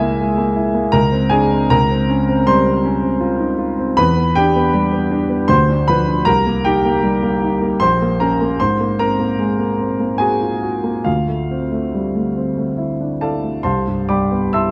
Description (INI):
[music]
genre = classical, impressionist solo piano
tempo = 67-82 BPM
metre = 3/4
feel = rubato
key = unclear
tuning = A4 = 442 Hz
[part]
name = warm grand piano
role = solo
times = 0.0-14.7 s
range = Bb1 to E6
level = -17 LUFS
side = equal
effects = none
[sound]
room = moderate recital hall reverb, RT60 1.5 s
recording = dark, warm production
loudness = -17 LUFS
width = mono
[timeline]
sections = 0.0-13.7 A section; 13.7-14.7 B section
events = none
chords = 0.0 Dbm6; 0.9 Bb9/Db; 1.7 Dbmaj7#11; 4.0 Em7; 5.5 Dm7; 6.3 Cm7; 7.8 Bbm; 8.6 Ab9; 11.1 Dm11; 13.7 Cmaj7